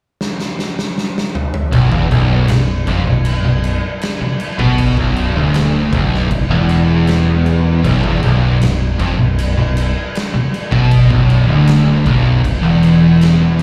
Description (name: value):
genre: stoner and doom metal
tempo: 78 BPM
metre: 4/4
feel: straight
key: B minor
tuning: A4 = 441 Hz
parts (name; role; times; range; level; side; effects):
- oversized low-tuned drum kit; drums; 0.2-13.6 s; crash cymbal, kick drum, snare drum, toms; -23 LUFS; equal; none
- overdriven semi-hollow guitar; riff; 1.7-13.6 s; B1 to B2; -19 LUFS; equal; none
- thick fuzz guitar; riff; 1.7-13.6 s; B1 to B2; -21 LUFS; equal; distortion, slapback echo
- thick fuzz guitar; riff; 1.7-13.6 s; B1 to B2; -19 LUFS; equal; none
- overdriven fingered electric bass; bass; 1.7-13.6 s; B0 to B1; -20 LUFS; equal; none
room: studio reverb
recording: live gig heard through the venue's PA, club reverb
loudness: -14 LUFS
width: mono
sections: 0.0-1.7 A section; 1.7-13.6 B section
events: drum fill 0.2-1.7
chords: 0.0 N.C.; 1.7 Bm